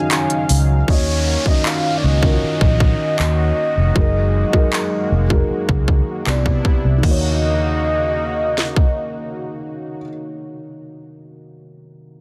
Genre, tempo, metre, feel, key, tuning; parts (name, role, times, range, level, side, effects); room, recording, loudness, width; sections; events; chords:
contemporary R&B; 78 BPM; 4/4; straight; Eb minor; A4 = 439 Hz
soft octave-layered synth lead; melody; 0.0-10.0 s; Db5 to F5; -25 LUFS; equal; chorus, digital delay
felt-muted upright piano; accompaniment; 0.0-12.2 s; C3 to Ab5; -26 LUFS; equal
lush unison pad; sustained chords; 0.0-10.0 s; C3 to F5; -30 LUFS; equal; chorus
trap drum kit; drums; 0.1-8.9 s; crash cymbal, handclaps, hi-hat, kick drum, snare drum; -20 LUFS; equal
vintage muted fingered electric bass; bass; 0.5-10.0 s; F1 to Eb2; -20 LUFS; equal
downlifter; sound effects; 0.9-7.0 s; -31 LUFS; equal
little or no reverb; dense, heavily limited modern master; -17 LUFS; mono
0.9-7.0 A section; 7.0-10.1 B section
break 0.0-0.9
0.0 Ebm9; 0.9 Ebm7; 4.0 Gb69; 6.3 Cmaj9; 7.0 Ebm7